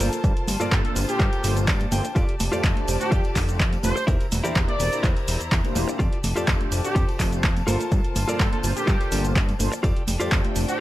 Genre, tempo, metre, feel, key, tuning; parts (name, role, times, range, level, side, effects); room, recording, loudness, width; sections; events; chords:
filtered disco house; 125 BPM; 4/4; straight; F major; A4 = 440 Hz
mellow synth brass; accompaniment; 0.0-10.8 s; A3 to A5; -30 LUFS; equal; chorus, phaser, cassette tape, sidechain pumping
clear studio string section; sustained chords; 0.0-10.8 s; Bb3 to Bb5; -34 LUFS; left 2 dB; vintage 12-bit sampler grit, sidechain pumping
direct-recorded clean electric guitar; riff; 0.0-10.5 s; E4 to G5; -30 LUFS; left 1 dB; vintage 12-bit sampler grit, sidechain pumping
fat analog bass; bass; 0.0-10.7 s; E1 to G2; -26 LUFS; equal; sidechain pumping
punchy analog drum machine; drums; 0.0-10.8 s; cabasa, handclaps, hi-hat; -28 LUFS; equal; sidechain pumping on hats, sidechain pumping on perc
congas and tambourine; percussion; 0.0-10.8 s; -35 LUFS; right 2 dB; sidechain pumping on perc
electronic kick drum; drums; 0.2-10.4 s; -23 LUFS; equal
clear horn section; melody; 0.7-10.8 s; G4 to D5; -30 LUFS; equal; sidechain pumping, digital delay
digital ambience; lossy compression artefacts; -20 LUFS; side -15 dB against mid
0.0-10.8 A section
clean electric guitar fill 1.2-2.2
0.0 Gm11; 2.2 F69; 4.1 C7/E; 6.0 F69; 7.7 Gm11; 9.8 F69